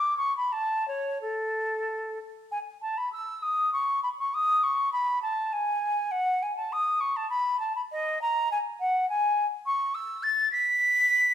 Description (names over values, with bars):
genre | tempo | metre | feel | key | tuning
classical, baroque-style fantasia for unaccompanied flute | 87-108 BPM | 3/4 | rubato | unclear | A4 = 441 Hz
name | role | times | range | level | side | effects
silver concert flute | solo | 0.0-11.3 s | A4 to B6 | -24 LUFS | equal | none
room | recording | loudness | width
moderate recital hall reverb, RT60 1.3 s | minimal, uncompressed stereo recording | -25 LUFS | side -10 dB against mid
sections
0.0-2.5 A section; 2.5-11.3 A section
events
none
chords
none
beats
| 0.54 1.21 1.88 | 2.52 3.12 3.73 | 4.34 4.92 5.52 | 6.12 6.72 7.30 | 7.91 8.52 9.10 | 9.66 10.22 10.79